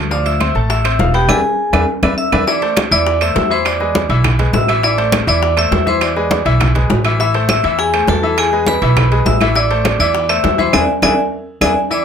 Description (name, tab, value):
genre	latin, salsa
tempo	203 BPM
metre	4/4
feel	straight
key	A harmonic minor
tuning	A4 = 440 Hz
part	bright grand piano	accompaniment	0.0-12.0 s	E3 to C6	-19 LUFS	left 4 dB	none
part	upright bass	bass	0.0-11.7 s	E1 to E2	-17 LUFS	right 1 dB	none
part	vibraphone with hard mallets	melody	0.1-12.0 s	G4 to E6	-16 LUFS	equal	none
part	bongos	percussion	0.1-11.7 s	none	-26 LUFS	left 5 dB	none
part	congas	percussion	0.1-12.0 s	none	-21 LUFS	left 2 dB	none
part	timbales and agogo bells	percussion	0.3-12.0 s	none	-22 LUFS	right 5 dB	none
part	claves	percussion	0.4-11.7 s	none	-22 LUFS	right 6 dB	none
room	moderate small room reverb, RT60 0.6 s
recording	none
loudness	-12 LUFS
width	side -7 dB against mid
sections	0.0-2.5 A section; 2.5-11.9 B section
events	drum fill 1.3-2.5, 10.7-11.9; band accent 1.3-2.5, 10.7-11.9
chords	0.1 Dm7; 1.3 E7; 2.5 Am; 3.7 E7; 4.8 Am; 6.0 E7; 7.2 Am; 8.4 E; 9.6 Am; 10.7 E7